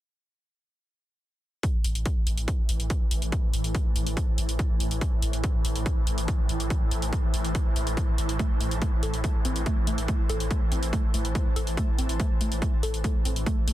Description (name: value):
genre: driving peak-time techno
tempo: 142 BPM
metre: 4/4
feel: straight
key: A minor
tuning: A4 = 439 Hz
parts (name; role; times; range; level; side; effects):
- swarming drone; drone; 2.3-13.7 s; A2 to E3; -34 LUFS; equal; built-in reverb, sidechain pumping
- electronic hi-hat; drums; 1.6-13.7 s; none; -35 LUFS; left 1 dB; overdrive
- electronic kick drum; drums; 1.6-13.6 s; none; -26 LUFS; equal; overdrive
- granular cloud pad; texture; 3.2-13.7 s; E4 to A5; -40 LUFS; right 2 dB; built-in reverb, sidechain pumping
- warm sub bass; bass; 1.7-13.7 s; A1; -29 LUFS; equal; tube saturation, sidechain pumping, low-pass filter
- woody wave-folded pluck; riff; 8.4-13.7 s; A3 to A4; -34 LUFS; equal; chorus, sidechain pumping, ping-pong delay
room: little or no reverb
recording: dense, heavily limited modern master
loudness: -24 LUFS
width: side -14 dB against mid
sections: 1.6-13.7 A section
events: fade-in on ambient pad 1.6-13.7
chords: 1.6 Am